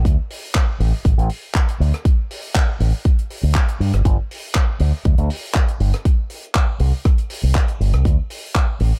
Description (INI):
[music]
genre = nu-disco, nu disco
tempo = 120 BPM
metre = 4/4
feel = straight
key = unclear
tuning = A4 = 440 Hz
[part]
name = fingered electric bass with an envelope filter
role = bass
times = 0.0-8.9 s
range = G1 to G2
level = -19 LUFS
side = equal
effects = none
[part]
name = electronic kick drum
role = drums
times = 0.1-8.7 s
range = none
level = -19 LUFS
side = equal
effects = none
[part]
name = tight funk drum kit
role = drums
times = 0.1-8.9 s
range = handclaps, hi-hat, rim click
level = -29 LUFS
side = equal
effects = none
[sound]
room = little or no reverb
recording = none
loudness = -19 LUFS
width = mono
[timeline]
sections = 0.0-9.0 A section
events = none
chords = none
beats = | 0.05 0.55 1.05 1.55 | 2.05 2.55 3.05 3.55 | 4.05 4.55 5.05 5.55 | 6.05 6.55 7.05 7.55 | 8.05 8.55